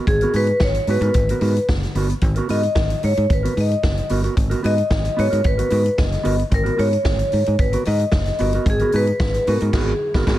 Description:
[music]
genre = disco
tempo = 112 BPM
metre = 4/4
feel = straight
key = G# minor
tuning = A4 = 441 Hz
[part]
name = mellow electric guitar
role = accompaniment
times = 0.0-10.4 s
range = B3 to B4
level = -26 LUFS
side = right 5 dB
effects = none
[part]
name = vibraphone with medium hard mallets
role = melody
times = 0.1-10.4 s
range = G#4 to D#5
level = -22 LUFS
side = left 1 dB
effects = none
[part]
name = fingered electric bass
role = bass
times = 0.1-10.4 s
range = F#1 to G#2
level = -20 LUFS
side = equal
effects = none
[part]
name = vintage drum kit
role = drums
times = 0.1-10.4 s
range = crash cymbal, hi-hat, kick drum, snare drum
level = -22 LUFS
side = equal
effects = gated reverb
[sound]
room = studio reverb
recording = none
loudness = -16 LUFS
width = side -14 dB against mid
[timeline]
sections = 0.0-10.4 A section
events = band accent 9.7-10.4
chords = 0.0 G#m9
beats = | 0.07 0.61 1.14 1.68 | 2.22 2.75 3.29 3.83 | 4.37 4.90 5.44 5.98 | 6.52 7.05 7.59 8.13 | 8.66 9.20 9.74 10.28

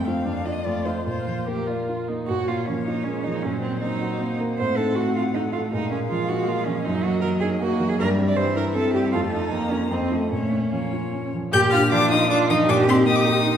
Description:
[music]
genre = quick classical-period movement for piano quartet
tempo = 145-162 BPM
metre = 3/4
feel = rubato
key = Bb minor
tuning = A4 = 440 Hz
[part]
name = clear cello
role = second line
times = 0.0-13.6 s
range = A3 to D5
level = -26 LUFS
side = right 2 dB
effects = none
[part]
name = rich viola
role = accompaniment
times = 0.0-13.6 s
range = E3 to G4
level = -26 LUFS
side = right 1 dB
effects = none
[part]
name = warm baby grand piano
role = accompaniment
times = 0.0-13.6 s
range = F2 to Eb5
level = -25 LUFS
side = equal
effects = none
[part]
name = warm violin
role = melody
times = 0.1-13.6 s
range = Bb4 to G6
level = -28 LUFS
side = left 5 dB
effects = none
[sound]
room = wet recital hall reverb, RT60 1.5 s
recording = heard from further back in the room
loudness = -20 LUFS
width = side -9 dB against mid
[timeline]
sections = 0.0-2.3 A section; 2.3-11.5 B section; 11.5-13.6 B section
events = none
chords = 0.3 Bb/F; 0.7 F7; 1.1 Bb; 2.3 Bbm; 3.4 Cm7b5/Bb; 4.6 Adim7; 5.7 Bb5; 6.9 Ebm/Gb; 8.0 C/G; 9.1 F; 9.5 Bbm/F; 9.9 F7; 10.3 Bbm; 11.5 Bb; 12.7 Cm9/Bb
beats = 0.26 0.65 | 1.06 1.47 1.88 | 2.28 2.67 3.06 | 3.45 3.83 4.21 | 4.59 4.97 5.35 | 5.73 6.11 6.49 | 6.86 7.23 7.61 | 7.99 8.37 8.75 | 9.13 9.52 9.91 | 10.31 10.71 11.12 | 11.53 11.91 12.30 | 12.69 13.07 13.46

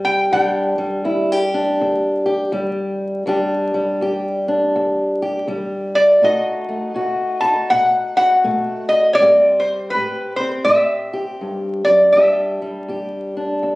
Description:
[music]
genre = acoustic country blues, solo or duo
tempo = 81 BPM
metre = 4/4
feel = swing 62% on 8ths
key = E minor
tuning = A4 = 439 Hz
[part]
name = lap resonator guitar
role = melody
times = 0.0-13.8 s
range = B4 to A5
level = -14 LUFS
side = equal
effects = none
[part]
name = fingerpicked old ladder-braced acoustic guitar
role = accompaniment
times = 0.0-13.8 s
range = E2 to G4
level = -20 LUFS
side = equal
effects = none
[sound]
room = light reverb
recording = recorded on a phone in the room, studio reverb, vinyl crackle, compression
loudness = -15 LUFS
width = side -20 dB against mid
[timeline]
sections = 0.0-13.8 A section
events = none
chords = 0.3 Em7; 6.2 B7; 9.2 Am7; 12.2 Em7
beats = | 0.34 1.08 1.81 2.55 | 3.29 4.03 4.77 5.51 | 6.25 6.99 7.72 8.46 | 9.20 9.94 10.68 11.42 | 12.16 12.90 13.64

